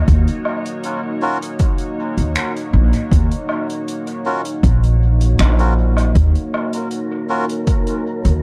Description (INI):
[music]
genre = ambient dub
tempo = 79 BPM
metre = 4/4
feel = straight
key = Eb minor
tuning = A4 = 437 Hz
[part]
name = deep dark ambient pad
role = sustained chords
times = 0.0-8.4 s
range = Bb3 to F5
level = -26 LUFS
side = equal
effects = chorus, built-in reverb
[part]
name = upright bass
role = bass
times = 0.0-8.4 s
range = Bb1 to Eb2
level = -16 LUFS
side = equal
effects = none
[part]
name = electronic kick drum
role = drums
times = 0.1-7.8 s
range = none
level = -19 LUFS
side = equal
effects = overdrive
[part]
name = soft-mallet drum kit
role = drums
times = 0.1-8.4 s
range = finger snaps, hi-hat, woodblock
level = -28 LUFS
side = equal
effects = dub echo
[part]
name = melodica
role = stabs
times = 1.2-7.5 s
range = Db4 to Bb4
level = -28 LUFS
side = equal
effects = vintage 12-bit sampler grit, dub echo
[part]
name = wind-like tuned noise texture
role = texture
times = 6.4-8.4 s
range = Bb4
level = -33 LUFS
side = equal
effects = built-in reverb
[sound]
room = little or no reverb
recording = dark, warm production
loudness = -18 LUFS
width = mono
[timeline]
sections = 0.0-8.4 A section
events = none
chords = 0.0 Ebm7